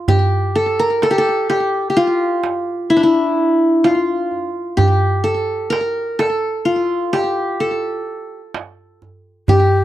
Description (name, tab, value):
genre	Turkish makam ensemble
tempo	128 BPM (eighths)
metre	10/8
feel	straight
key	unclear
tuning	A4 = 440 Hz
part	qanun	melody	0.0-9.8 s	D4 to Bb4	-16 LUFS	left 1 dB	slapback echo
part	darbuka	percussion	0.1-9.7 s	none	-17 LUFS	right 2 dB	none
part	breathy mellow ney	second line	9.5-9.8 s	G4	-17 LUFS	left 3 dB	none
room	little or no reverb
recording	dry, close 1970s-style studio recording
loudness	-15 LUFS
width	side -13 dB against mid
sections	0.0-9.5 A section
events	none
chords	none